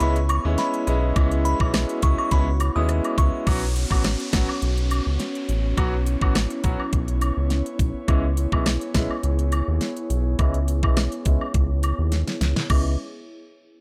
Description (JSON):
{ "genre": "dancehall", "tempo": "104 BPM", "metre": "4/4", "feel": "straight", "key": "C# minor", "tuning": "A4 = 440 Hz", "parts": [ { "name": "glassy synth bell", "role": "melody", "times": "0.0-3.3 s", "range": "B5 to D#6", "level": "-31 LUFS", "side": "equal", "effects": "chorus, tremolo, analog delay" }, { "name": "bright concert grand piano", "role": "accompaniment", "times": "0.0-12.9 s", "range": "F#3 to F#4", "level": "-30 LUFS", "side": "equal", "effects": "sidechain pumping, low-pass filter" }, { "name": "airy breathy pad", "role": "sustained chords", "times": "0.0-13.0 s", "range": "B3 to C#5", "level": "-34 LUFS", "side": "equal", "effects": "chorus, low-pass filter" }, { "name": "round analog bass", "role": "bass", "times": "0.0-13.0 s", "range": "A1 to D#2", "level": "-25 LUFS", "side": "equal", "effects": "none" }, { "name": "pop drum kit", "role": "drums", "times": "0.0-12.8 s", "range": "crash cymbal, hi-hat, kick drum, rim click, snare drum", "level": "-25 LUFS", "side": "equal", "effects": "none" }, { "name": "cabasa and woodblock", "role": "percussion", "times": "0.3-13.0 s", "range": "none", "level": "-35 LUFS", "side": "equal", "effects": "none" }, { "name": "downlifter", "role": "sound effects", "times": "3.5-8.1 s", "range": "none", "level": "-38 LUFS", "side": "equal", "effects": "none" } ], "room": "digital ambience", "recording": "dry, gritty hardware recording", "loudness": "-22 LUFS", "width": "mono", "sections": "0.0-3.5 A section; 3.5-12.7 B section; 12.7-13.8 C section", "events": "filter sweep 3.5-12.7; drum fill 12.1-12.7", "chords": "0.0 C#m7; 3.5 Bsus2; 8.1 C#m7", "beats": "0.01 0.58 | 1.16 1.74 2.31 2.89 | 3.47 4.05 4.62 5.20 | 5.78 6.35 6.93 7.51 | 8.08 8.66 9.24 9.81 | 10.39 10.97 11.55 12.12 | 12.70" }